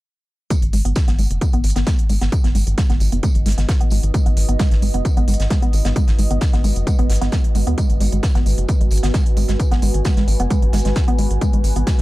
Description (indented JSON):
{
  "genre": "driving peak-time techno",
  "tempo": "132 BPM",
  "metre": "4/4",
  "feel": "straight",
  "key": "G# minor",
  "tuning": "A4 = 440 Hz",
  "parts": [
    { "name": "woody wave-folded pluck", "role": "riff", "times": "0.5-12.0 s", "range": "G#3 to B3", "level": "-25 LUFS", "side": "right 2 dB", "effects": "analog chorus, sidechain pumping, digital delay" },
    { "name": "electronic hi-hat", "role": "drums", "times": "0.5-12.0 s", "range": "none", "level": "-32 LUFS", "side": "right 2 dB", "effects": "none" },
    { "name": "electronic kick drum", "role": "drums", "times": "0.5-12.0 s", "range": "none", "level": "-17 LUFS", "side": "equal", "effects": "none" },
    { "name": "tambourine and snare drum", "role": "drums", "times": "0.5-12.0 s", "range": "none", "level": "-34 LUFS", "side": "equal", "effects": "high-pass filter on snare, high-pass filter on perc, high-pass filter on room" },
    { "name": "deep dark ambient pad", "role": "texture", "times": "3.0-12.0 s", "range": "F#4 to G#5", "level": "-29 LUFS", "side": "right 1 dB", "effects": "chorus, built-in reverb, sidechain pumping" },
    { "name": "tight sequencer bass", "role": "bass", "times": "0.6-12.0 s", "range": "F#1 to D#2", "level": "-19 LUFS", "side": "equal", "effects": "sidechain pumping" }
  ],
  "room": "digital ambience",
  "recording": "dark, warm production",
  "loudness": "-15 LUFS",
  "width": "side -18 dB against mid",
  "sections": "0.5-12.0 A section",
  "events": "filter sweep on synth arpeggio sound 0.5-12.0",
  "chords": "0.5 G#m"
}